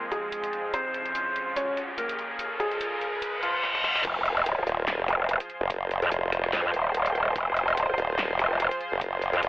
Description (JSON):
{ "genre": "heavy wobble dubstep", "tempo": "145 BPM", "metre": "4/4", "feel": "swing 55% on 16ths, half-time", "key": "F phrygian", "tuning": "A4 = 440 Hz", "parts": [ { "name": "felt-muted upright piano", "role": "melody", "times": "0.0-4.0 s", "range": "F3 to Db5", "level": "-30 LUFS", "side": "equal", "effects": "digital delay" }, { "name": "lush unison pad", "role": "sustained chords", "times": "0.0-9.5 s", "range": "F2 to C5", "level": "-34 LUFS", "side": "equal", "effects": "chorus, sidechain pumping" }, { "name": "riser, reverse cymbal and impact", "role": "sound effects", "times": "1.4-5.7 s", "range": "none", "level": "-32 LUFS", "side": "equal", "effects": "none" }, { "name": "dubstep drum kit", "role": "drums", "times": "0.1-9.5 s", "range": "crash cymbal, finger snaps, handclaps, hi-hat, snare drum", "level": "-33 LUFS", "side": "equal", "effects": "none" }, { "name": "growl bass", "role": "bass", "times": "4.0-9.4 s", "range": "Eb1 to F2", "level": "-24 LUFS", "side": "equal", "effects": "chorus, overdrive" }, { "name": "electronic kick drum", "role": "drums", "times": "4.0-9.1 s", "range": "none", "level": "-39 LUFS", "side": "equal", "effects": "none" }, { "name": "formant-sweep wobble bass", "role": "bass", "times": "4.7-9.5 s", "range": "Eb1 to Gb1", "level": "-27 LUFS", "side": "equal", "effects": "chorus, overdrive" } ], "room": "light reverb", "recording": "high-pass filter, telephone sound", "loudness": "-25 LUFS", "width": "side -19 dB against mid", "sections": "0.0-4.0 A section; 4.0-9.5 B section", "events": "build-up 0.0-4.0; filter sweep 0.0-4.0; riser 1.4-3.6; reverse cymbal 3.2-4.0; drum fill 3.6-4.0; drop 4.0-9.5; impact 4.0-5.7", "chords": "0.0 Fm; 0.7 Db/F; 2.4 Bbm7; 4.0 Fm", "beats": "0.32 | 0.74 1.15 1.56 1.98 | 2.39 2.81 3.22 3.63 | 4.05 4.46 4.88 5.29 | 5.70 6.12 6.53 6.94 | 7.36 7.77 8.19 8.60 | 9.01 9.43" }